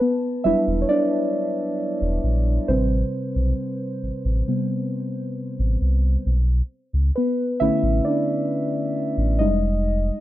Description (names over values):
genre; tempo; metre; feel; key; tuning
contemporary R&B; 67 BPM; 4/4; straight; E minor; A4 = 440 Hz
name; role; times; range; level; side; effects
muted felt-like synth keys; accompaniment; 0.0-10.2 s; C3 to A5; -22 LUFS; equal; chorus
sub bass with octave; bass; 0.4-10.1 s; E1 to C#2; -20 LUFS; equal; none
room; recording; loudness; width
light reverb; dark, warm production, nothing above 10.9 kHz; -20 LUFS; side -14 dB against mid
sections
0.0-10.2 A section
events
synth keys solo 0.0-10.2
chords
0.0 Em9; 2.7 Am9; 6.3 Bm9; 9.4 Fm9